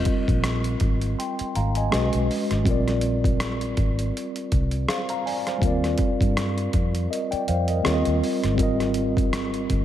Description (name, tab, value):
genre	R&B, neo-soul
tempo	81 BPM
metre	4/4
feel	swing 57% on 16ths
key	unclear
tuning	A4 = 440 Hz
part	mellow tine electric piano	accompaniment	0.0-9.8 s	G3 to C6	-25 LUFS	equal	medium stereo tremolo
part	boom bap sampler-style drum kit	drums	0.1-9.8 s	hi-hat, kick drum, rim click	-26 LUFS	equal	none
part	vintage muted fingered electric bass	bass	0.3-9.8 s	G1 to G2	-25 LUFS	equal	none
room	moderate plate reverb, RT60 3.6 s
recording	dreamy mix soaked in reverb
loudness	-21 LUFS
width	side -11 dB against mid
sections	0.0-9.8 A section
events	none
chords	0.0 Fm9; 1.9 Badd9; 2.7 Bb9; 5.6 Ebmaj9; 7.8 Eb69; 8.6 Ab69